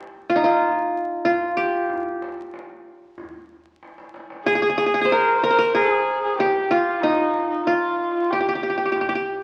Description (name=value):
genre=Turkish makam ensemble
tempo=94 BPM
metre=4/4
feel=straight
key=G makam kurdi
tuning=A4 = 440 Hz
part: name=qanun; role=melody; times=0.0-9.4 s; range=Eb4 to C5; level=-22 LUFS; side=equal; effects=none
part: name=darbuka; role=percussion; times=0.6-9.1 s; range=none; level=-42 LUFS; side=equal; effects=none
part: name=warm kamancheh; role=second line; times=4.5-9.3 s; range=Eb4 to C5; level=-28 LUFS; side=equal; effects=none
room=moderate large studio reverb, RT60 1.4 s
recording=very old 78 rpm record, vinyl crackle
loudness=-21 LUFS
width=mono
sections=0.0-4.5 A section; 4.5-9.4 B section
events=drum fill 3.8-4.5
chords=none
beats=0.62 1.26 | 1.90 2.54 3.19 3.83 | 4.47 5.11 5.75 6.39 | 7.03 7.67 8.31 8.95